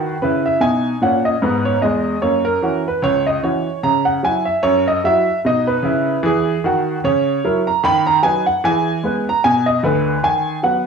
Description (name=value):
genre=jazz, stride piano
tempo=150 BPM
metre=4/4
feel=swing 58% on 8ths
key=B major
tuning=A4 = 439 Hz
part: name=clear upright piano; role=solo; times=0.0-10.9 s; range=C#2 to B5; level=-15 LUFS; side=right 1 dB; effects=cassette tape
room=wet spring reverb, RT60 1.3 s, small room ambience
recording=home recording on cassette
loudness=-15 LUFS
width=side -6 dB against mid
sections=0.6-10.9 A section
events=none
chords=0.0 B; 2.2 F#7; 3.8 F#5/C#; 5.4 B; 7.0 F#7/C#; 7.8 B/D#; 8.6 E; 10.2 B/D#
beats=0.22 | 0.62 1.02 1.42 1.82 | 2.22 2.62 3.03 3.43 | 3.83 4.23 4.63 5.03 | 5.43 5.83 6.24 6.64 | 7.04 7.44 7.84 8.24 | 8.64 9.04 9.44 9.84 | 10.24 10.64